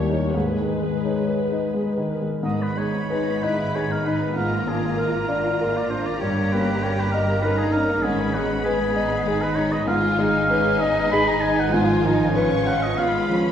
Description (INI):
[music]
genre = classical, romantic movement for piano and orchestra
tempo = 83-101 BPM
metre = 3/4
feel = rubato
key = G# minor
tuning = A4 = 440 Hz
[part]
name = clear concert grand piano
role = melody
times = 0.0-13.5 s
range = D#2 to F5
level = -23 LUFS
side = left 1 dB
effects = none
[part]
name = rich symphonic viola section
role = accompaniment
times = 0.0-13.5 s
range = Eb3 to C#5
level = -31 LUFS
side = equal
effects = none
[part]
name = mellow French horn section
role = sustained chords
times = 0.0-2.1 s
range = G#3 to A#3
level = -27 LUFS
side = left 4 dB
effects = none
[part]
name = dark clarinet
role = second line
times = 1.0-2.4 s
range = A#4 to C#5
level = -30 LUFS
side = left 1 dB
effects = none
[part]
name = rich symphonic violin section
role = melody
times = 2.4-13.5 s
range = Ab5 to Db6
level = -35 LUFS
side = left 2 dB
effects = none
[part]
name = warm oboe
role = second line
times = 2.4-13.4 s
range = F#4 to Cb6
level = -26 LUFS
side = equal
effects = none
[part]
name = warm symphonic violin section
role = second line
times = 2.4-13.5 s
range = G3 to F4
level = -30 LUFS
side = left 3 dB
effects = none
[part]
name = dark studio double bass section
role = bass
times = 2.4-13.5 s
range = G1 to G#1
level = -29 LUFS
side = right 1 dB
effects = none
[part]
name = rich studio cello section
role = bass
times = 3.1-13.5 s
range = B3 to G4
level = -27 LUFS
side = right 1 dB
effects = none
[sound]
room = wet scoring stage reverb, RT60 1.7 s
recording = heard from further back in the room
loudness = -19 LUFS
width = side -9 dB against mid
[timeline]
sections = 0.0-2.4 A section; 2.4-13.5 A section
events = none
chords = 0.3 G#m; 4.4 A#7/G#; 6.2 D#7/G; 8.0 G#m; 9.9 Abm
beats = | 0.34 1.05 1.75 | 2.44 3.10 3.75 | 4.37 4.99 5.60 | 6.22 6.83 7.43 | 8.04 8.65 9.26 | 9.88 10.49 11.11 | 11.73 12.36 12.98